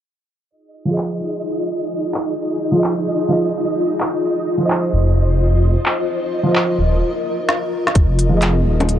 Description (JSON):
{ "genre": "future garage", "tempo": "129 BPM", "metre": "4/4", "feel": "swing 64% on 16ths", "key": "F minor", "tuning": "A4 = 441 Hz", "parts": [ { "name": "granular cloud pad", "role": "sustained chords", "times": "1.2-9.0 s", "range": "Eb4 to Eb5", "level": "-21 LUFS", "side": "left 1 dB", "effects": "built-in reverb, sidechain pumping" }, { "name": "flickering grainy texture", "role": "texture", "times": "1.1-9.0 s", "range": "Eb5", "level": "-30 LUFS", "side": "right 2 dB", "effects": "built-in reverb" }, { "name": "felt-muted upright piano", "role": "accompaniment", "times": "0.9-9.0 s", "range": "F3 to Eb5", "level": "-21 LUFS", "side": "right 2 dB", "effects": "sidechain pumping, low-pass filter, analog delay" }, { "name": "organic electronic drum kit", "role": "drums", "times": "1.0-9.0 s", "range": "bongos, handclaps, hi-hat, snare drum", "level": "-20 LUFS", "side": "equal", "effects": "vintage 12-bit sampler grit" }, { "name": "swelling detuned saw bass", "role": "bass", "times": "4.9-9.0 s", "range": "Eb1 to F1", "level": "-15 LUFS", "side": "equal", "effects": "tube saturation, sidechain pumping" }, { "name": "electronic kick drum", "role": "drums", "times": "8.0-8.1 s", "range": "none", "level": "-13 LUFS", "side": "equal", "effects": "vintage 12-bit sampler grit" } ], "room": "moderate huge ambient reverb, RT60 4.9 s", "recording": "low-pass filter", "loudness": "-16 LUFS", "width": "side -11 dB against mid", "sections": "0.5-8.0 A section; 8.0-9.0 B section", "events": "filter sweep on felt piano 0.5-8.0; filter sweep 0.5-8.0; break 7.0-8.0; drum fill 7.5-8.0", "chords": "0.5 Fm7; 4.2 Bbsus24; 8.0 Fm7" }